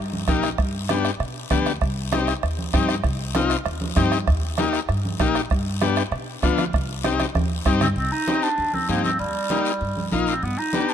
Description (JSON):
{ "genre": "latin, cumbia", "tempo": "195 BPM", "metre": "4/4", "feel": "straight", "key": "C minor", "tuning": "A4 = 441 Hz", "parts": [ { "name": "upright bass", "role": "bass", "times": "0.0-10.5 s", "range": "Bb1 to B2", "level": "-26 LUFS", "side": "equal", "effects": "none" }, { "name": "congas", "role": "percussion", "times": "0.1-10.9 s", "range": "none", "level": "-30 LUFS", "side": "right 3 dB", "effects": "none" }, { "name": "combo organ", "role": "accompaniment", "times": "0.3-10.9 s", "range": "Bb3 to G4", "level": "-25 LUFS", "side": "left 5 dB", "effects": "none" }, { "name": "bombo", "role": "percussion", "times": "0.3-8.0 s", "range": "none", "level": "-25 LUFS", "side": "right 2 dB", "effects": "none" }, { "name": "guiro", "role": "percussion", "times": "0.3-10.9 s", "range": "none", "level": "-34 LUFS", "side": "left 8 dB", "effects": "none" }, { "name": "clear clarinet", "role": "melody", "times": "7.8-10.9 s", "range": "G3 to Eb4", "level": "-24 LUFS", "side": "right 2 dB", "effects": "none" } ], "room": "light reverb", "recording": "minimal, uncompressed stereo recording", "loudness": "-20 LUFS", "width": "side -9 dB against mid", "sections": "0.0-8.0 A section; 8.0-10.9 B section", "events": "drum fill 7.0-8.0", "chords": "0.0 Eb; 0.6 G; 1.8 Cm; 4.3 Eb; 5.5 G7; 6.7 Cm; 9.2 Eb; 10.4 G" }